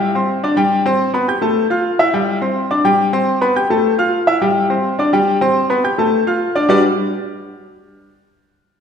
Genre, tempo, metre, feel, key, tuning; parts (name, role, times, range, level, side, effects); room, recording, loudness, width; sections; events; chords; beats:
latin; 211 BPM; 4/4; straight; G major; A4 = 444 Hz
clear grand piano; solo; 0.0-6.8 s; G3 to G6; -14 LUFS; left 1 dB
wet recital hall reverb, RT60 1.7 s; recorded in a church or concert hall; -13 LUFS; side -7 dB against mid
0.0-6.7 A section; 6.7-7.8 B section
0.4 G5; 1.0 C5; 1.6 F; 2.1 Gsus4; 2.7 G5; 3.3 C5; 3.8 F; 4.4 Gsus4; 5.0 G5; 5.6 C5; 6.1 F; 6.7 Gmaj7
0.14 0.43 0.71 | 0.99 1.28 1.56 1.85 | 2.13 2.42 2.70 2.99 | 3.27 3.56 3.84 4.13 | 4.41 4.70 4.98 5.27 | 5.55 5.84 6.12 6.41 | 6.69